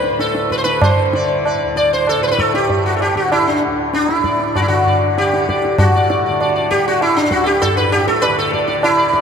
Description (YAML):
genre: indian classical, Hindustani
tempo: 97 BPM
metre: 4/4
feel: straight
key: D raga khamaj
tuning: A4 = 440 Hz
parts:
  - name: sitar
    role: melody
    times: 0.0-9.2 s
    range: D4 to D5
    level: -15 LUFS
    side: equal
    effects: none
  - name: tanpura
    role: drone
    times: 0.0-9.2 s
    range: D2 to D3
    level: -24 LUFS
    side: left 1 dB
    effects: none
  - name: tabla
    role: percussion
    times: 0.0-9.2 s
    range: none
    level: -20 LUFS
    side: right 1 dB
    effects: none
room: wet cathedral reverb, RT60 5.1 s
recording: in a vast, echoing space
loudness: -13 LUFS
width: side -7 dB against mid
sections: 0.0-5.8 A section; 5.8-9.2 B section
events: speeding up 0.0-9.2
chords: none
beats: 0.20 | 0.83 1.45 2.08 2.70 | 3.32 3.94 4.56 5.17 | 5.79 6.40 7.01 7.62 | 8.22 8.83